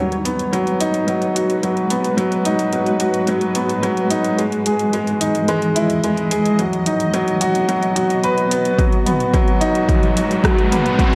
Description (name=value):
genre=piano and strings electronica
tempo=109 BPM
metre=4/4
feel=straight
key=G# minor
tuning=A4 = 443 Hz
part: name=granular cloud pad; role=sustained chords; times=0.0-11.2 s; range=E3 to D#5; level=-25 LUFS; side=equal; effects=built-in reverb
part: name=clear upright piano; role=riff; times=0.0-11.2 s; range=F#3 to B4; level=-20 LUFS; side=equal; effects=delay
part: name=deep house drum kit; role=drums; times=0.1-11.1 s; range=hi-hat, rim click, toms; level=-28 LUFS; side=equal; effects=overdrive, studio reverb
part: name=electronic kick drum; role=drums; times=8.8-11.1 s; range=none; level=-20 LUFS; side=equal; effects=overdrive, studio reverb
part: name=riser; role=sound effects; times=9.6-11.2 s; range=none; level=-27 LUFS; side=equal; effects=none
room=moderate echo chamber reverb, RT60 1.8 s, studio reverb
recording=none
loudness=-18 LUFS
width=mono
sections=0.0-11.2 A section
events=build-up 0.0-11.2; riser 9.6-11.2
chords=0.0 G#m7; 4.4 Emaj7; 6.6 B; 8.8 G#m7